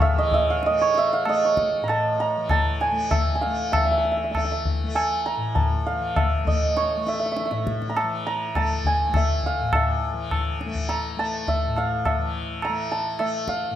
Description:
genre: indian classical, Hindustani.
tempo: 95-106 BPM.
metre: 5/4.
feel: straight.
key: A raga puriya dhanashri.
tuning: A4 = 441 Hz.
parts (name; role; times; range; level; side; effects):
santur; melody; 0.0-13.8 s; G#4 to Bb5; -23 LUFS; right 2 dB; none.
tanpura; drone; 0.0-13.8 s; A2 to A3; -30 LUFS; left 3 dB; none.
tabla; percussion; 0.3-13.7 s; none; -25 LUFS; left 2 dB; none.
room: moderate recital hall reverb, RT60 1.6 s.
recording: close, detailed microphones.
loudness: -21 LUFS.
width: side -11 dB against mid.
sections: 0.0-3.7 A section; 3.7-13.8 B section.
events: speeding up 0.0-13.8.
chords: none.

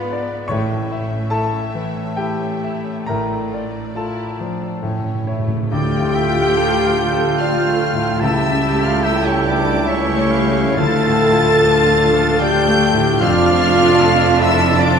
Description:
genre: classical, romantic movement for piano and orchestra.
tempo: 65-76 BPM.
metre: 3/4.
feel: rubato.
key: D minor.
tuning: A4 = 441 Hz.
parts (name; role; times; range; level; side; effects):
clear concert grand piano; melody; 0.0-15.0 s; C#2 to D6; -20 LUFS; left 2 dB; none.
warm symphonic violin section; melody; 0.0-15.0 s; C#5 to A6; -24 LUFS; left 2 dB; none.
rich symphonic violin section; second line; 0.0-15.0 s; A3 to A5; -28 LUFS; equal; none.
clear symphonic viola section; accompaniment; 0.0-15.0 s; A3 to G4; -24 LUFS; right 1 dB; none.
rich studio cello section; bass; 0.5-15.0 s; C#2 to A2; -25 LUFS; right 3 dB; none.
rich symphonic double bass section; bass; 0.5-15.0 s; F1 to D2; -26 LUFS; right 3 dB; none.
timpani; percussion; 0.5-5.7, 10.8-12.0 s; A2 to D3; -27 LUFS; left 1 dB; none.
clear oboe; second line; 5.7-15.0 s; D5 to A5; -25 LUFS; right 2 dB; none.
concert flute; second line; 5.7-15.0 s; C#5 to A5; -24 LUFS; equal; none.
warm clarinet; second line; 5.7-15.0 s; C#4 to A4; -24 LUFS; right 3 dB; none.
clear trombone section; sustained chords; 5.7-15.0 s; F3 to A3; -27 LUFS; right 3 dB; none.
mellow French horn section; sustained chords; 5.7-15.0 s; C#4 to A4; -21 LUFS; left 2 dB; none.
warm trumpet section; stabs; 5.7-15.0 s; D4 to F4; -25 LUFS; right 2 dB; none.
room: wet scoring stage reverb, RT60 1.9 s.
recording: minimal, uncompressed stereo recording.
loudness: -14 LUFS.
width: side -6 dB against mid.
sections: 0.0-5.7 A section; 5.7-15.0 B section.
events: timpani fill 4.8-5.7.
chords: 0.0 G#dim7; 0.5 A; 5.7 Dm; 8.2 A7/C#; 10.8 Dm; 13.2 Dm/F.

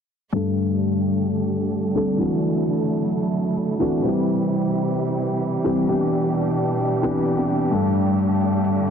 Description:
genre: EDM, festival progressive house.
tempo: 130 BPM.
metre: 4/4.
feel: straight.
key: G major.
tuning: A4 = 435 Hz.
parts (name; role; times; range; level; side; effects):
dark grand piano; accompaniment; 0.3-8.9 s; G2 to A4; -20 LUFS; left 1 dB; tape echo.
clear studio string section; sustained chords; 0.3-8.9 s; A2 to A4; -26 LUFS; right 4 dB; none.
electronic hi-hat; drums; 0.3-8.9 s; none; -52 LUFS; right 1 dB; none.
room: light reverb, studio reverb.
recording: dense, heavily limited modern master, low-pass filter.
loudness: -19 LUFS.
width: side -7 dB against mid.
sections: 0.3-8.9 A section.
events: filter sweep 0.3-8.9.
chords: 0.3 Gsus2; 2.2 Dadd9; 4.0 C; 5.9 Em7; 7.7 Gsus2.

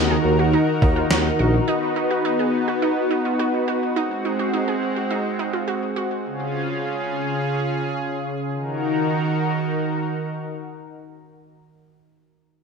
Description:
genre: synth-pop.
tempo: 105 BPM.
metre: 4/4.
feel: straight.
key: Eb minor.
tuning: A4 = 441 Hz.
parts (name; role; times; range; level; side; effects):
mellow synth brass; accompaniment; 0.0-3.9 s; Eb4 to B4; -23 LUFS; equal; chorus.
lush unison pad; sustained chords; 0.0-11.6 s; Db3 to Bb4; -23 LUFS; equal; chorus.
wide unison pluck; arpeggios; 0.0-6.2 s; Eb4 to Ab4; -27 LUFS; right 2 dB; ping-pong delay.
smooth synth bass; bass; 0.0-1.6 s; Bb1 to Eb2; -21 LUFS; equal; none.
gated 80s digital drum machine; drums; 0.8-1.2 s; kick drum, snare drum; -22 LUFS; equal; gated reverb, gated reverb snare, overdrive.
room: light reverb.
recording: none.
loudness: -20 LUFS.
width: side -5 dB against mid.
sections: 0.0-8.5 A section; 8.5-10.8 B section.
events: none.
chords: 0.0 Ebm; 1.7 B; 4.0 Ab7; 6.2 Db; 8.5 Ebm.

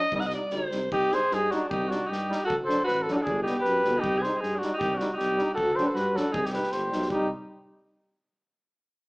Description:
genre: balkan folk, Balkan brass band.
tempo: 156 BPM.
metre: 2/4.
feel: swing 54% on 16ths.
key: C hungarian minor.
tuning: A4 = 438 Hz.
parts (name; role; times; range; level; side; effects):
clear alto saxophone; second line; 0.0-7.3 s; D4 to F#5; -31 LUFS; equal; none.
mellow French horn; accompaniment; 0.0-7.3 s; B3 to Eb4; -33 LUFS; equal; none.
clear trombone; accompaniment; 0.1-7.3 s; F#3 to G3; -37 LUFS; equal; none.
dark tuba; bass; 0.1-7.3 s; G1 to G2; -33 LUFS; equal; none.
unplugged drum kit; percussion; 0.1-7.3 s; kick drum, snare drum; -41 LUFS; equal; none.
mellow flugelhorn; melody; 0.9-7.3 s; F#4 to C5; -26 LUFS; equal; none.
room: moderate large studio reverb, RT60 1.1 s.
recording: band playing live in one room, small speaker sound.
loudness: -24 LUFS.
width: side -31 dB against mid.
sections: 0.9-7.1 A section.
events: speeding up 0.0-7.9.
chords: 0.1 Cm; 2.5 D; 3.3 G; 4.0 Cm; 5.6 D; 6.3 Cm.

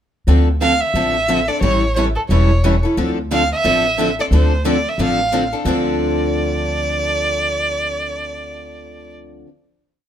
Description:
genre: acoustic string swing (jazz manouche).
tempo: 178 BPM.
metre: 4/4.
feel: swing 60% on 8ths.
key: D minor.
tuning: A4 = 440 Hz.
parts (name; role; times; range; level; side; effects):
picked steel-string acoustic guitar; accompaniment; 0.3-9.5 s; D3 to A4; -22 LUFS; left 4 dB; none.
picked swing-style acoustic guitar; accompaniment; 0.3-9.5 s; D3 to A4; -24 LUFS; right 3 dB; none.
upright bass; bass; 0.3-9.4 s; E1 to D2; -19 LUFS; equal; none.
rich violin; melody; 0.6-9.1 s; A4 to F5; -19 LUFS; right 2 dB; none.
room: light reverb.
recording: minimal, uncompressed stereo recording.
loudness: -15 LUFS.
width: side -10 dB against mid.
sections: 0.3-5.7 A section; 5.7-8.4 final chord.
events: none.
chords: 0.3 Dm7; 1.6 A7; 3.0 Dm7.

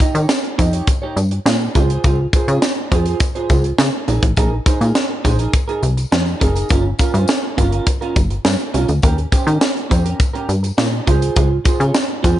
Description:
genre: early-eighties boogie funk.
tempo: 103 BPM.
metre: 4/4.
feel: straight.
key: unclear.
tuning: A4 = 440 Hz.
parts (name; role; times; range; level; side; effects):
electric guitar at the edge of break-up; riff; 0.0-12.4 s; Db4 to Eb5; -22 LUFS; right 4 dB; analog chorus.
tight funk drum kit; drums; 0.0-12.4 s; hi-hat, kick drum, snare drum; -17 LUFS; equal; gated reverb.
tambourine; percussion; 0.0-12.4 s; none; -35 LUFS; left 8 dB; none.
plucky analog bass; bass; 0.1-12.4 s; Gb1 to Eb3; -17 LUFS; equal; none.
room: small room ambience.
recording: nothing above 10.4 kHz.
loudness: -14 LUFS.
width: side -13 dB against mid.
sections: 0.0-12.4 A section.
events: none.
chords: 0.0 Eb7; 1.8 Dbmaj7; 4.1 Bb7sus4; 6.7 Gm7b5; 9.0 Eb7; 11.1 Dbmaj7.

